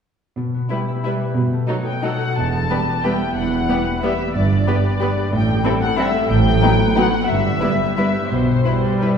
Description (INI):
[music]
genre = classical, orchestral ballroom waltz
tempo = 182 BPM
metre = 3/4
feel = uneven beats, rubato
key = E minor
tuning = A4 = 440 Hz
[part]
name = concert harp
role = arpeggios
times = 0.4-9.2 s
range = E2 to E5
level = -23 LUFS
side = left 2 dB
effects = none
[part]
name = muted studio cello section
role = bass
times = 0.4-8.6 s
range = E2 to B2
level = -23 LUFS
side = right 2 dB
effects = none
[part]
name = muted studio violin section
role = melody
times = 0.7-9.2 s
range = A4 to A5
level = -23 LUFS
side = left 4 dB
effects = none
[part]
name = muted studio violin section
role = second line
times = 0.7-9.1 s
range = D#4 to B4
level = -27 LUFS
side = left 3 dB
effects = none
[part]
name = muted studio viola section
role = accompaniment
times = 0.7-9.2 s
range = F#3 to C4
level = -24 LUFS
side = right 2 dB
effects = none
[part]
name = muted studio double bass section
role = bass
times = 2.4-8.6 s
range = E1 to B1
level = -22 LUFS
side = right 2 dB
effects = none
[sound]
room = wet concert hall reverb, RT60 1.8 s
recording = heard from further back in the room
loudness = -16 LUFS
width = side -7 dB against mid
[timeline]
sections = 0.4-2.4 A section; 2.4-9.2 B section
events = none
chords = 0.4 Em/B; 1.4 B7; 2.4 Em; 4.3 G; 5.3 Am7; 6.3 B7(no3)/A; 7.3 Em/G; 8.3 Em/B